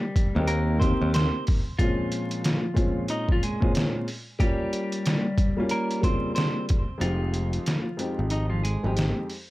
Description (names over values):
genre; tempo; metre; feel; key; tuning
hip hop, boom-bap hip-hop; 92 BPM; 4/4; swing 61% on 16ths; F minor; A4 = 440 Hz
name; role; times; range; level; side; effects
clean electric guitar; melody; 0.0-8.9 s; F3 to Eb5; -31 LUFS; equal; high-pass filter, low-pass filter
dark upright piano; accompaniment; 0.0-9.3 s; F2 to G4; -29 LUFS; equal; cassette tape, high-pass filter, low-pass filter
trip hop sampler-style drum kit; drums; 0.2-9.5 s; hi-hat, kick drum, snare drum; -25 LUFS; equal; overdrive
modern bright picked electric bass; bass; 0.4-1.3, 7.0-9.1 s; F1 to Eb2; -25 LUFS; equal; none
room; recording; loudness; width
little or no reverb; vinyl crackle; -23 LUFS; side -18 dB against mid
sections
0.0-7.0 A section; 7.0-9.5 B section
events
kick muted 7.0-9.5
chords
0.0 Cm7; 1.8 Bbm7; 4.4 Gm7b5; 7.0 Fm7